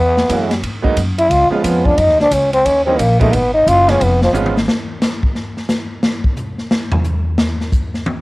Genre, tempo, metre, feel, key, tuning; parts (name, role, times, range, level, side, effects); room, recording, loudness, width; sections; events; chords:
jazz, big band swing; 178 BPM; 4/4; swing 64% on 8ths; A4 = 440 Hz
growling trombone; melody; 0.0-4.3 s; E#3 to E#4; -13 LUFS; equal
upright bass; bass; 0.0-4.7 s; E#1 to G#2; -18 LUFS; equal
swinging big-band drum kit; drums; 0.2-8.2 s; hi-hat, kick drum, ride cymbal, snare drum, toms; -18 LUFS; equal; cassette tape
clear baby grand piano; accompaniment; 0.3-4.5 s; E3 to F#4; -19 LUFS; right 4 dB; cassette tape
moderate booth ambience, RT60 0.2 s; home recording on cassette; -13 LUFS; side -21 dB against mid
0.0-4.7 A section; 4.7-8.2 A section
trombone solo 0.0-4.7; drum fill 4.3-4.7; drum solo 4.7-8.2
0.0 C#m7; 0.6 G#m7; 1.3 C#7; 2.0 F#5; 2.6 D#7b9; 3.3 G#m7; 4.0 C#7; 4.7 N.C.